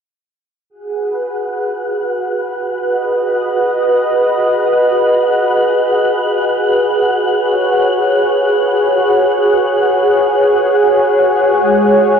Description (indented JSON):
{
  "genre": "ambient",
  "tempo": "free time",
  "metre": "none",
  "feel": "none",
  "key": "G# minor",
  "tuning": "A4 = 438 Hz",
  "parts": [
    { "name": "lush unison pad", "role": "sustained chords", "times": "0.7-12.2 s", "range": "G#3 to D#5", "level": "-12 LUFS", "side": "equal", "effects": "chorus" },
    { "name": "wind-like tuned noise texture", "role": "texture", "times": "1.0-12.2 s", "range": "F#4 to F#5", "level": "-19 LUFS", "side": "right 1 dB", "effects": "built-in reverb" }
  ],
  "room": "wet cathedral reverb, RT60 5.3 s",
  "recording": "in a vast, echoing space, cassette tape",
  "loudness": "-12 LUFS",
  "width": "side -7 dB against mid",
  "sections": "0.7-12.2 A section",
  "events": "filter sweep on analog synth pad 0.7-12.2",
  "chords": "0.7 G#m; 11.5 F#5/G#",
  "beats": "free time"
}